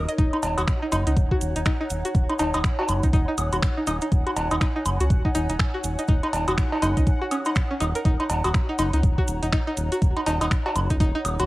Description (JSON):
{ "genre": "minimal techno", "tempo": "122 BPM", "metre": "4/4", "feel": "swing 60% on 16ths", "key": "Eb minor", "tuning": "A4 = 442 Hz", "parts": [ { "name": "round analog bass", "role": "bass", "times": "0.0-11.5 s", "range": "Eb1 to Db2", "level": "-26 LUFS", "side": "equal", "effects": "sidechain pumping" }, { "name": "bubbling stepped-filter texture", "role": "texture", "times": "0.0-11.5 s", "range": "Eb5 to Gb5", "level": "-38 LUFS", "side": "equal", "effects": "chorus, built-in reverb, sidechain pumping, cassette tape" }, { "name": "warbly tape-like pad", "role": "texture", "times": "0.0-11.5 s", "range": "Eb4 to Bb5", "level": "-33 LUFS", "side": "equal", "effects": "chorus, built-in reverb, sidechain pumping, cassette tape" }, { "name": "string-like resonator pluck", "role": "riff", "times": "0.1-11.4 s", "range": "Db4 to Eb5", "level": "-28 LUFS", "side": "equal", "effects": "chorus, sidechain pumping, cassette tape, analog delay" }, { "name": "garage drum kit", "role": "drums", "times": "0.1-11.5 s", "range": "finger snaps, hi-hat", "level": "-32 LUFS", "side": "equal", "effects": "cassette tape" }, { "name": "cabasa", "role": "percussion", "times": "0.1-11.5 s", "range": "none", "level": "-39 LUFS", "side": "right 8 dB", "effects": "none" }, { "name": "electronic kick drum", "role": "drums", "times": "0.2-11.1 s", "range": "none", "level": "-21 LUFS", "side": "equal", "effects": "cassette tape" }, { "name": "woodblock and cowbell", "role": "percussion", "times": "0.3-11.5 s", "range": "none", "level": "-28 LUFS", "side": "right 1 dB", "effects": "cassette tape" } ], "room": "light reverb, digital ambience", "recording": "home recording on cassette", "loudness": "-20 LUFS", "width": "side -18 dB against mid", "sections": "0.0-11.5 A section", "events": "none", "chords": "0.0 Ebm7" }